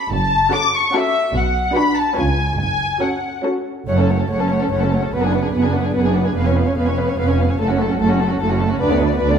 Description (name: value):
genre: quick classical-period movement for string orchestra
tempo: 146 BPM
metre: 3/4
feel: straight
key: F# minor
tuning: A4 = 439 Hz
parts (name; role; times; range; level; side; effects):
- muted symphonic violin section; melody; 0.0-9.4 s; D5 to D6; -22 LUFS; left 3 dB; none
- muted symphonic cello section; bass; 0.1-9.4 s; D2 to C#3; -22 LUFS; right 1 dB; none
- muted symphonic double bass section; bass; 0.1-9.4 s; E#1 to D2; -22 LUFS; right 2 dB; none
- muted studio violin section; second line; 0.5-9.4 s; F#4 to F#5; -24 LUFS; left 2 dB; none
- muted symphonic viola section; accompaniment; 0.5-9.4 s; A3 to F#4; -21 LUFS; right 2 dB; none
room: wet scoring stage reverb, RT60 1.7 s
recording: minimal, uncompressed stereo recording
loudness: -16 LUFS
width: side -7 dB against mid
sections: 0.0-3.9 A section; 3.9-9.4 B section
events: none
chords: 0.1 F#m; 1.3 Bm; 2.2 C#7; 2.6 F#m; 5.1 G#m7b5/F#; 6.4 C#7/E#; 7.6 F#m; 8.8 Bm/D